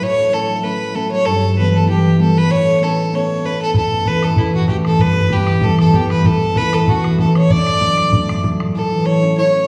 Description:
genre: celtic folk, Celtic reel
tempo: 192 BPM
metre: 4/4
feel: swing 54% on 8ths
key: unclear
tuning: A4 = 440 Hz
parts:
  - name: rich fiddle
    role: melody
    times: 0.0-9.7 s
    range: E4 to D5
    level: -20 LUFS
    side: equal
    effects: none
  - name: concert harp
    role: accompaniment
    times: 0.0-9.7 s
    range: D2 to E4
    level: -18 LUFS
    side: equal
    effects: none
  - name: bodhran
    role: percussion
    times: 3.7-8.7 s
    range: none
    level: -21 LUFS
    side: equal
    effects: none
room: wet recital hall reverb, RT60 1.7 s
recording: recorded in a church or concert hall, small room reverb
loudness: -15 LUFS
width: mono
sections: 0.0-8.7 A section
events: none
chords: 0.0 A6; 1.3 Em/G; 2.5 Aadd9; 3.7 A; 5.0 Em/G; 6.2 A; 7.5 D; 8.7 A

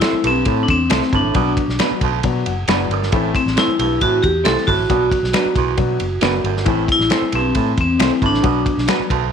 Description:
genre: uptempo 1960s-style soul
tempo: 136 BPM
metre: 4/4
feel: straight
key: A dorian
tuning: A4 = 440 Hz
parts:
  - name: vibraphone with hard mallets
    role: melody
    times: 0.0-8.9 s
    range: C4 to A4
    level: -18 LUFS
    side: left 1 dB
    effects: none
  - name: dark upright piano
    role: accompaniment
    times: 0.0-9.1 s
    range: E3 to F#5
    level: -24 LUFS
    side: left 11 dB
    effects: none
  - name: electric guitar through a small old amp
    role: stabs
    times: 0.0-9.0 s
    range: B3 to C5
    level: -24 LUFS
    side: right 14 dB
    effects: none
  - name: warm soul drum kit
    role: drums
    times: 0.0-9.2 s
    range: hi-hat, kick drum, ride cymbal, snare drum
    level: -22 LUFS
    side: equal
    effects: none
  - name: finger snaps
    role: percussion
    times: 0.0-9.0 s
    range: none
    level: -26 LUFS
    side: left 13 dB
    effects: none
  - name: vintage muted fingered electric bass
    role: bass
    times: 0.1-9.3 s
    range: F#1 to B2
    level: -23 LUFS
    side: equal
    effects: none
  - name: raspy baritone saxophone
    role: riff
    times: 0.2-9.3 s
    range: D2 to B2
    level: -24 LUFS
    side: right 14 dB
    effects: none
room: light reverb, small room ambience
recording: 1960s-style stereo with parts hard left and right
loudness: -14 LUFS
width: side -7 dB against mid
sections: 0.0-9.3 A section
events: upright piano fill 2.2-3.1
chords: 0.0 Am; 1.4 Bm; 3.1 Am; 4.9 Bm; 6.7 Am; 8.4 Bm

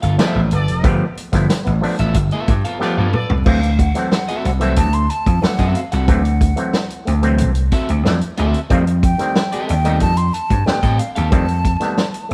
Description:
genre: funk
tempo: 92 BPM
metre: 4/4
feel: straight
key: unclear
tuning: A4 = 441 Hz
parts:
  - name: electric guitar at the edge of break-up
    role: accompaniment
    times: 0.0-11.3 s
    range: B3 to F#5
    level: -27 LUFS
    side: equal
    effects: none
  - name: overdriven clav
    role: stabs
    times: 0.0-12.3 s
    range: Eb3 to G4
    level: -26 LUFS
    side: equal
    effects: auto-wah
  - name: vintage slap bass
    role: bass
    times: 0.0-12.3 s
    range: F1 to A2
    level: -20 LUFS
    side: equal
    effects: none
  - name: warm soul drum kit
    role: drums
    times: 0.0-12.3 s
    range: crash cymbal, hi-hat, kick drum, snare drum, toms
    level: -21 LUFS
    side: equal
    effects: none
  - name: clear horn section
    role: second line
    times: 0.2-3.3 s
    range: A4 to D5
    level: -29 LUFS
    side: equal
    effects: none
  - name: breathy hollow jazz flute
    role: melody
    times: 3.5-12.3 s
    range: F5 to C6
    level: -26 LUFS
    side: equal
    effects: none
room: moderate stone room reverb, RT60 1.3 s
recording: band playing live in one room, vinyl crackle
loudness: -17 LUFS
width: mono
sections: 0.0-3.5 A section; 3.5-12.3 B section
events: drum fill 2.8-3.5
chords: 0.0 G13; 3.5 D9; 8.7 F9

